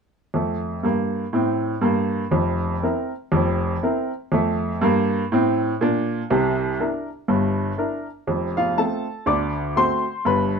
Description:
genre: jazz, stride piano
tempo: 121 BPM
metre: 4/4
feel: swing 59% on 8ths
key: F major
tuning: A4 = 439 Hz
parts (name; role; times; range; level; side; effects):
- clear upright piano; solo; 0.3-10.6 s; F1 to D6; -20 LUFS; equal; none
room: moderate club reverb, RT60 0.7 s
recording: dark, warm production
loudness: -20 LUFS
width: side -6 dB against mid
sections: 0.3-8.3 A section; 8.3-10.6 B section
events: none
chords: 0.3 F; 2.3 C7/F; 4.3 F; 6.3 C9; 8.3 F; 9.3 D7

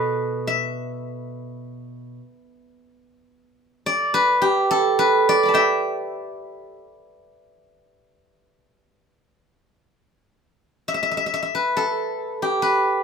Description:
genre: chinese traditional, Chinese solo plucked strings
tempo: 70 BPM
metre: 4/4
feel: rubato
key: E yu mode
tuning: A4 = 439 Hz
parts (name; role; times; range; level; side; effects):
- steel-string zither; solo; 0.0-13.0 s; B2 to D6; -19 LUFS; equal; none
room: wet studio reverb, RT60 0.6 s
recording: minimal, uncompressed stereo recording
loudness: -19 LUFS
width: side -6 dB against mid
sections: 0.0-10.9 A section; 10.9-13.0 B section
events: none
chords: none

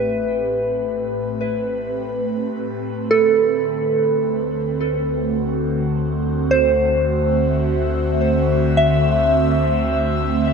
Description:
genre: ambient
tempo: free time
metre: none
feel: none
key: D mixolydian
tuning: A4 = 442 Hz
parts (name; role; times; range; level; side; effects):
- airy breathy pad; sustained chords; 0.0-10.5 s; A2 to E5; -20 LUFS; right 1 dB; chorus, phaser
- soft synth bell; arpeggios; 0.0-10.5 s; A4 to E5; -20 LUFS; right 2 dB; chorus, tape echo
- deep rumbling drone; bass; 0.0-10.5 s; A1 to D2; -27 LUFS; left 1 dB; built-in reverb
room: wet cathedral reverb, RT60 4.8 s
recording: none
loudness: -17 LUFS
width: side -5 dB against mid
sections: 0.0-10.5 A section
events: fade-in on analog synth pad 0.0-10.5; fade-in on synth drone 0.0-10.5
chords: 0.0 Am9; 3.1 D7

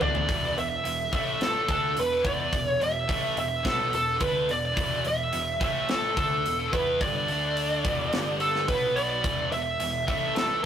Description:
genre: hard rock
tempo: 107 BPM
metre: 4/4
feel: straight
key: E minor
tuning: A4 = 440 Hz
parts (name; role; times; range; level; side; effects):
- smooth overdriven lead guitar; melody; 0.0-10.6 s; A4 to E5; -26 LUFS; right 1 dB; none
- distorted electric guitar; riff; 0.0-10.7 s; E2 to E4; -34 LUFS; right 2 dB; distortion
- heavy high-gain guitar; riff; 0.0-10.7 s; E2 to E4; -35 LUFS; left 5 dB; distortion
- fuzz picked electric bass; bass; 0.0-10.6 s; E1 to E2; -35 LUFS; equal; overdrive
- tight metal drum kit; drums; 0.0-10.5 s; hi-hat, kick drum, snare drum, toms; -31 LUFS; left 1 dB; none
room: moderate stone room reverb, RT60 1.4 s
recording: rough rehearsal-room recording, tube saturation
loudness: -24 LUFS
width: side -9 dB against mid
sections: 0.3-10.7 A section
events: drum fill 0.0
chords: 0.3 E5; 1.1 A5; 1.7 E5; 5.6 A5; 6.2 Em; 7.3 D5; 7.8 E5; 8.1 G5; 8.7 B5; 9.2 E5; 10.1 A5

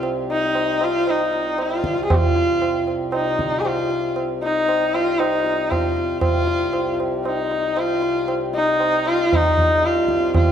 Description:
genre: indian classical, Hindustani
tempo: 116 BPM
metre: 4/4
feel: straight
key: unclear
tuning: A4 = 436 Hz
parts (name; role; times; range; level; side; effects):
- warm sarangi; melody; 0.0-10.5 s; Eb4 to Ab4; -19 LUFS; left 1 dB; none
- hand-pumped harmonium; drone; 0.0-10.5 s; C2 to C3; -29 LUFS; left 3 dB; none
- tabla; percussion; 0.0-10.5 s; none; -23 LUFS; right 2 dB; none
room: moderate recital hall reverb, RT60 1.4 s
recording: none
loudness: -18 LUFS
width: side -8 dB against mid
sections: 0.0-10.5 A section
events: none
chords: none

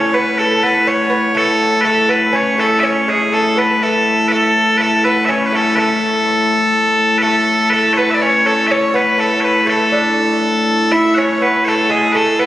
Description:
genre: medieval dance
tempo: 123 BPM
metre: 3/4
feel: straight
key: A major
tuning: A4 = 440 Hz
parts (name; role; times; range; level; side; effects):
- loud bright bagpipes; melody; 0.0-12.5 s; G#4 to F#5; -13 LUFS; equal; none
- lute; second line; 0.0-12.5 s; G#3 to E4; -20 LUFS; right 1 dB; none
- dark hurdy-gurdy; drone; 0.0-12.5 s; A2; -19 LUFS; left 1 dB; none
- clear fiddle; second line; 7.2-12.5 s; G#4 to E5; -24 LUFS; left 2 dB; none
room: wet church reverb, RT60 3.0 s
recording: recorded on a phone in the room, studio reverb, compression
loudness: -12 LUFS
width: side -14 dB against mid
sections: 0.0-7.2 A section; 7.2-12.5 A section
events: none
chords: none

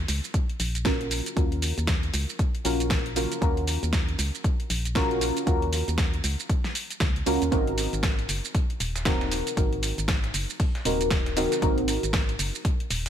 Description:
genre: deep house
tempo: 117 BPM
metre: 4/4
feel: swing 60% on 16ths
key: Eb dorian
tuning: A4 = 440 Hz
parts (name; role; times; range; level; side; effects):
- deep mellow chord stab; stabs; 0.0-13.1 s; C4 to Bb4; -28 LUFS; equal; chorus, phaser, sidechain pumping, dub echo
- organ-like FM bass; bass; 0.0-13.1 s; Eb1 to Eb2; -29 LUFS; equal; sidechain pumping
- deep house drum kit; drums; 0.1-13.1 s; hi-hat, shaker, snare drum; -30 LUFS; equal; none
- electronic kick drum; drums; 0.3-12.8 s; none; -26 LUFS; equal; none
- dusty soul sampler-style drum kit; drums; 7.5-13.1 s; hi-hat, snare drum; -39 LUFS; equal; sidechain pumping on hats, high-pass filter on hats, high-pass filter on snare, high-pass filter on room
room: little or no reverb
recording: none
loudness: -23 LUFS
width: side -9 dB against mid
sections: 0.0-13.1 A section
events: none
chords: 0.0 Ebm7; 7.5 Ab7

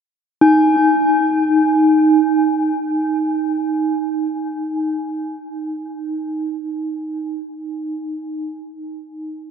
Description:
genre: world meditative, free-time meditation music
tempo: free time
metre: none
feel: none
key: unclear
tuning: A4 = 440 Hz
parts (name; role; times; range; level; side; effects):
- bronze singing bowl; solo; 0.4-7.8 s; Eb4; -16 LUFS; equal; diffuse ambient delay
room: wet huge ambient reverb, RT60 7.6 s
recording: dreamy mix soaked in reverb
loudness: -16 LUFS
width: side -7 dB against mid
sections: 0.0-9.5 A section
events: none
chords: none

